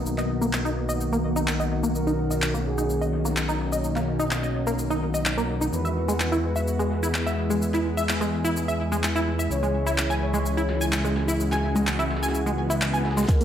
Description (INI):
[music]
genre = progressive house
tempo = 127 BPM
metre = 4/4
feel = straight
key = unclear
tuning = A4 = 440 Hz
[part]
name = lush unison pad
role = sustained chords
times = 0.0-13.4 s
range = C#3 to G#4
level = -28 LUFS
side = left 1 dB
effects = chorus, sidechain pumping
[part]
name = fat analog bass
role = bass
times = 0.0-13.3 s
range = B1 to E2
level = -28 LUFS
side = equal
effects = tube saturation, sidechain pumping
[part]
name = sub drop and swell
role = sound effects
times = 0.0-0.1, 12.5-13.3 s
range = none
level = -35 LUFS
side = right 3 dB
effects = none
[part]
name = breakbeat sampler-style drum kit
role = drums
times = 0.1-13.4 s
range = hi-hat, shaker, snare drum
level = -41 LUFS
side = equal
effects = none
[part]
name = deep house drum kit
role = drums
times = 0.1-13.4 s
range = cabasa, handclaps, hi-hat, snare drum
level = -30 LUFS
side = equal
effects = sidechain pumping on hats, high-pass filter on hats, studio reverb, sidechain pumping on perc, high-pass filter on perc, high-pass filter on snare
[part]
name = tight sequenced synth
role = arpeggios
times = 0.2-13.4 s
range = G#3 to G#5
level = -28 LUFS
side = equal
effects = chorus, sidechain pumping, tape echo
[part]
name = expressive synth lead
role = melody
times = 1.9-13.4 s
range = G#4 to C#5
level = -34 LUFS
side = right 1 dB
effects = lush chorus, tape echo
[part]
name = electronic kick drum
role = drums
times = 13.3-13.4 s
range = none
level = -18 LUFS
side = equal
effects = studio reverb
[sound]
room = wet plate reverb, RT60 1.4 s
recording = dreamy mix soaked in reverb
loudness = -22 LUFS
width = side -9 dB against mid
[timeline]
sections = 0.0-13.3 A section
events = filter sweep on synth arpeggio sound 0.0-13.3; filter sweep on analog synth pad 0.0-13.3; swell 12.5-13.3; drum fill 13.3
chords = 0.0 Bmaj7; 5.7 Eadd9; 9.5 C#m